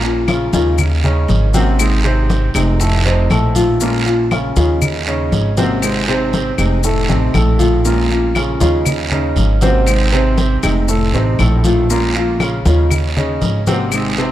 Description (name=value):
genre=latin, Cuban son and guajira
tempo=119 BPM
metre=4/4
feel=straight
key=Bb minor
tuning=A4 = 438 Hz
part: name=nylon-string guitar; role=accompaniment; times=0.0-14.3 s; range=Eb3 to Ab4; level=-20 LUFS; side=left 2 dB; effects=none
part: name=warm grand piano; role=arpeggios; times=0.0-14.3 s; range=A2 to C5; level=-19 LUFS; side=right 1 dB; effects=lush chorus, tape echo
part: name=upright bass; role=bass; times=0.0-14.3 s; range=F1 to Eb2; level=-16 LUFS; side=equal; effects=none
part: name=congas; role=percussion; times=0.0-14.3 s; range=none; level=-22 LUFS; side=left 2 dB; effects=none
part: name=maracas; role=percussion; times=0.0-14.3 s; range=none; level=-28 LUFS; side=left 9 dB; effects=none
part: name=claves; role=percussion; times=0.3-14.2 s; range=none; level=-27 LUFS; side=left 6 dB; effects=none
part: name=guiro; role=percussion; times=0.3-14.3 s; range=none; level=-26 LUFS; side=right 5 dB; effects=none
room=moderate plate reverb, RT60 3.1 s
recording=dreamy mix soaked in reverb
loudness=-12 LUFS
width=side -13 dB against mid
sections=0.0-14.3 A section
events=drum fill 7.1-7.8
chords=0.0 Bbm7; 0.8 Ebm7; 1.8 Ab; 2.8 F7; 3.8 Bbm7; 4.8 Ebm7; 5.8 Ab; 6.8 F7; 7.8 Bbm7; 8.9 Ebm7; 9.9 Ab; 10.9 F7; 11.9 Bbm7; 12.9 Ebm7